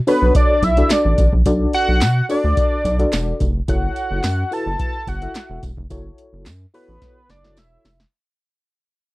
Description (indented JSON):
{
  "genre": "early-eighties boogie funk",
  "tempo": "108 BPM",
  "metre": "4/4",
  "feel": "straight",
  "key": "unclear",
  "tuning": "A4 = 443 Hz",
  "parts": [
    { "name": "fat analog lead", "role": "melody", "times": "0.1-8.0 s", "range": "B4 to A5", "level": "-20 LUFS", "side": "equal", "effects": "chorus, slapback echo" },
    { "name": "FM electric piano with tremolo", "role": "accompaniment", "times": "0.1-7.9 s", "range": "D4 to E5", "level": "-23 LUFS", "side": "left 2 dB", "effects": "none" },
    { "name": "electro analog drum machine", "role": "drums", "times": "0.1-8.1 s", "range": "handclaps, hi-hat, kick drum, snare drum", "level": "-20 LUFS", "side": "equal", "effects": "none" },
    { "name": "tambourine", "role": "percussion", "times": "0.1-8.0 s", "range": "none", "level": "-38 LUFS", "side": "right 18 dB", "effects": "none" },
    { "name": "rubbery square bass", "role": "bass", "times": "0.2-8.0 s", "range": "E1 to B2", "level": "-19 LUFS", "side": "equal", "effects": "none" }
  ],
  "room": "little or no reverb",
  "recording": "dry, close 1970s-style studio recording",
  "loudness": "-15 LUFS",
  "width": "side -19 dB against mid",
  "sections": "0.0-8.1 A section",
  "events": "fade-out 0.0-8.1; drum fill 7.0-8.1",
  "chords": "0.0 Bm9; 3.7 F#m7"
}